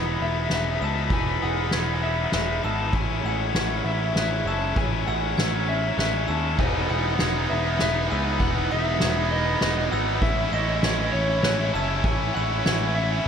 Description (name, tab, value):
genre	post-rock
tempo	99 BPM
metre	3/4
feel	straight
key	E major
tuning	A4 = 440 Hz
part	electric slide guitar	melody	0.0-13.3 s	C#5 to A5	-28 LUFS	left 2 dB	digital delay
part	dark studio string section	sustained chords	0.0-13.3 s	G#3 to B5	-37 LUFS	left 2 dB	none
part	glockenspiel with brass mallets	arpeggios	0.0-13.3 s	D#6 to E7	-34 LUFS	right 5 dB	digital delay
part	twangy electric guitar	arpeggios	0.0-13.3 s	A2 to C#4	-34 LUFS	left 2 dB	spring reverb, slapback echo, digital delay
part	tight distorted guitar	riff	0.0-13.3 s	B3 to E4	-30 LUFS	left 10 dB	distortion
part	overdriven picked electric bass	bass	0.0-13.2 s	E1 to D#2	-27 LUFS	equal	none
part	soft-mallet drum kit	drums	0.5-12.8 s	crash cymbal, kick drum, ride cymbal, snare drum	-27 LUFS	right 1 dB	none
part	overdriven electric guitar	riff	6.6-13.3 s	B3 to E4	-30 LUFS	right 9 dB	none
room	moderate concert hall reverb, RT60 2.2 s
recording	big arena sound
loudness	-21 LUFS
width	side -7 dB against mid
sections	0.0-13.3 A section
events	build-up 0.0-13.3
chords	0.0 Emaj7; 2.9 Amaj7; 6.6 Emaj7; 10.2 Amaj7